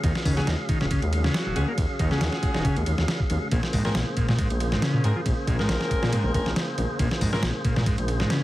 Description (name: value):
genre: breakbeat, breaks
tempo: 138 BPM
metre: 4/4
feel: swing 54% on 16ths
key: Eb dorian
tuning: A4 = 444 Hz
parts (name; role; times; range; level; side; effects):
- tonewheel organ; sustained chords; 0.0-8.4 s; Db3 to F5; -32 LUFS; right 1 dB; overdrive, fast rotary speaker, sidechain pumping
- combo organ; riff; 0.0-8.4 s; Ab2 to Bb3; -28 LUFS; equal; none
- detuned saw bass; bass; 0.0-8.2 s; Eb1 to Bb2; -26 LUFS; equal; none
- dusty soul sampler-style drum kit; drums; 0.0-8.4 s; hi-hat, kick drum, ride cymbal, snare drum; -27 LUFS; equal; none
- warm horn section; stabs; 0.4-7.4 s; C4 to Bb4; -34 LUFS; left 1 dB; dub echo
- congas; percussion; 0.4-8.1 s; none; -37 LUFS; left 3 dB; none
room: light reverb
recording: heavily compressed radio sound, multiband compression, vinyl crackle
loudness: -22 LUFS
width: side -16 dB against mid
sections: 0.0-8.4 A section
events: none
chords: 0.0 Ebm11; 3.5 Bbm9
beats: | 0.04 0.48 0.91 1.35 | 1.78 2.21 2.65 3.08 | 3.52 3.96 4.39 4.82 | 5.26 5.69 6.13 6.56 | 7.00 7.43 7.87 8.30